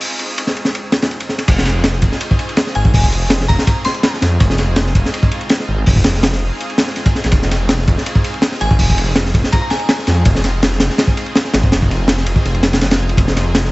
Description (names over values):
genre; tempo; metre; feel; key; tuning
drum and bass, jungle; 164 BPM; 4/4; straight; F minor; A4 = 439 Hz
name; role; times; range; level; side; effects
lush unison pad; sustained chords; 0.0-13.7 s; Ab3 to Ab4; -25 LUFS; equal; chorus
crunchy breakbeat drum kit; drums; 0.0-13.7 s; crash cymbal, hi-hat, kick drum, ride cymbal, snare drum; -14 LUFS; equal; none
detuned saw bass; bass; 1.5-13.7 s; F1 to F2; -17 LUFS; equal; tube saturation
glassy synth bell; melody; 2.8-4.1, 8.6-10.2 s; Ab5 to C6; -23 LUFS; left 1 dB; chorus, phaser, dub echo
room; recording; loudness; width
small room ambience; vinyl crackle, nothing above 8.0 kHz; -12 LUFS; side -22 dB against mid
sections
0.0-1.5 A section; 1.5-13.7 B section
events
filter sweep 0.0-1.5; drop 1.5-13.7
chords
0.0 Fm7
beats
| 0.01 0.38 0.74 1.11 | 1.48 1.84 2.21 2.57 | 2.94 3.31 3.67 4.04 | 4.40 4.77 5.13 5.50 | 5.87 6.23 6.60 6.96 | 7.33 7.70 8.06 8.43 | 8.79 9.16 9.52 9.89 | 10.26 10.62 10.99 11.35 | 11.72 12.09 12.45 12.82 | 13.18 13.55